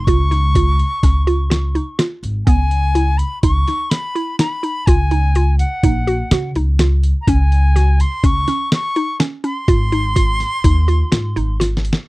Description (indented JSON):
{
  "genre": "progressive instrumental, band music in an uneven meter",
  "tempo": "125 BPM",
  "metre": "5/4",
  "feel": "straight",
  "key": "unclear",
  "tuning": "A4 = 440 Hz",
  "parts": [
    { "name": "silver concert flute", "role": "melody", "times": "0.0-11.6 s", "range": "Gb5 to Db6", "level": "-22 LUFS", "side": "left 1 dB", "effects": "none" },
    { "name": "hollow square pluck", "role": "arpeggios", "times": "0.0-12.0 s", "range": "B3 to Gb4", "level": "-21 LUFS", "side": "right 1 dB", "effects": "chorus" },
    { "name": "upright bass", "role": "bass", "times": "0.0-11.9 s", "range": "Ab1 to Db3", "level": "-15 LUFS", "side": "equal", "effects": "none" },
    { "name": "dusty soul sampler-style drum kit", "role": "drums", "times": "0.1-12.0 s", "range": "hi-hat, kick drum, snare drum", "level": "-16 LUFS", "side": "equal", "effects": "none" }
  ],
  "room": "little or no reverb",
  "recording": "dry, close 1970s-style studio recording",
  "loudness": "-14 LUFS",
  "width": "side -20 dB against mid",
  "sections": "0.0-2.5 A section; 2.5-12.1 B section",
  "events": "drum fill 11.6-12.1",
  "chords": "0.1 Db; 2.5 Emaj7/Db; 4.9 Ebm; 7.3 Gbsus2/Db; 9.7 Ab"
}